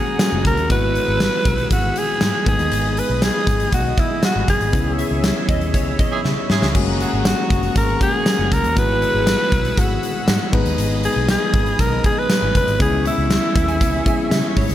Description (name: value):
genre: 1980s-style pop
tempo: 119 BPM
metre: 4/4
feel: straight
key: G# minor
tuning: A4 = 440 Hz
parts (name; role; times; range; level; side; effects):
- raspy alto saxophone; melody; 0.0-14.5 s; E4 to B4; -21 LUFS; right 1 dB; none
- bell-like tine electric piano; accompaniment; 0.0-14.7 s; G#3 to B4; -25 LUFS; left 4 dB; none
- phased analog pad; sustained chords; 0.0-14.7 s; G#4 to E6; -29 LUFS; left 1 dB; phaser, chorus
- huge arena drum kit; drums; 0.2-14.7 s; crash cymbal, hi-hat, kick drum, snare drum, tambourine; -19 LUFS; equal; gated reverb
- vintage muted fingered electric bass; bass; 0.3-14.7 s; F#1 to C#3; -23 LUFS; equal; none
- shimmering bell with halo; second line; 5.0-6.7, 13.6-14.7 s; C#5 to G#5; -30 LUFS; right 4 dB; ensemble chorus, phaser, digital delay
- warm horn section; stabs; 6.1-6.7 s; C#4 to G#4; -28 LUFS; right 6 dB; digital delay
room: light reverb, studio ambience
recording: none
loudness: -16 LUFS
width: side -12 dB against mid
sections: 0.0-6.8 A section; 6.8-14.7 A section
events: band accent 4.7-6.8; drum fill 6.2-6.8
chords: 0.0 F#add9; 0.7 Eadd9/G#; 2.5 G#m; 4.7 C#m7; 6.8 F#add9; 8.8 Eadd9/G#; 10.5 G#m; 12.8 C#m7